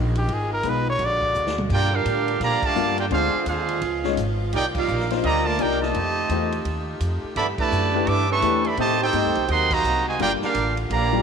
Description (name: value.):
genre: jazz, big band swing.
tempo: 170 BPM.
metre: 4/4.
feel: swing 63% on 8ths.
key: G minor.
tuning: A4 = 440 Hz.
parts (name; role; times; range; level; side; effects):
clear saxophone section; sustained chords; 0.0-11.2 s; C3 to D5; -32 LUFS; left 1 dB; none.
upright bass; bass; 0.0-11.2 s; G1 to Bb2; -26 LUFS; equal; none.
clear trumpet; melody; 0.2-1.7 s; G4 to D5; -24 LUFS; equal; none.
vintage drum kit; drums; 0.2-11.0 s; crash cymbal, hi-hat, kick drum, ride cymbal, snare drum, toms; -34 LUFS; equal; none.
warm upright piano; accompaniment; 0.6-11.2 s; G3 to Eb5; -27 LUFS; left 11 dB; none.
clear trumpet section; melody; 1.7-11.2 s; D4 to D6; -23 LUFS; right 2 dB; none.
clear trombone section; second line; 1.7-11.2 s; C3 to Bb4; -28 LUFS; right 11 dB; tape echo.
room: moderate echo chamber reverb, RT60 1.8 s, small room ambience.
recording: 1960s-style stereo with parts hard left and right.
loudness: -20 LUFS.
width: side -6 dB against mid.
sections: 0.0-1.7 A section; 1.7-11.2 B section.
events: trumpet solo 0.0-1.7; drum fill 1.3-1.7; band accent 2.6, 4.7, 7.5, 9.7.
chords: 0.3 Fm7b5; 1.0 Bbaug7; 1.7 Gm7; 3.1 Dm7b5; 3.8 C#9; 4.5 Cm11; 5.9 F9; 7.4 G69; 8.8 Am7b5; 9.5 Ab9; 10.2 Gm7.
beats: | 0.28 0.64 0.99 1.35 | 1.70 2.05 2.41 2.76 | 3.12 3.47 3.82 4.18 | 4.53 4.88 5.24 5.59 | 5.95 6.30 6.66 7.01 | 7.36 7.72 8.07 8.42 | 8.78 9.13 9.48 9.84 | 10.19 10.54 10.90.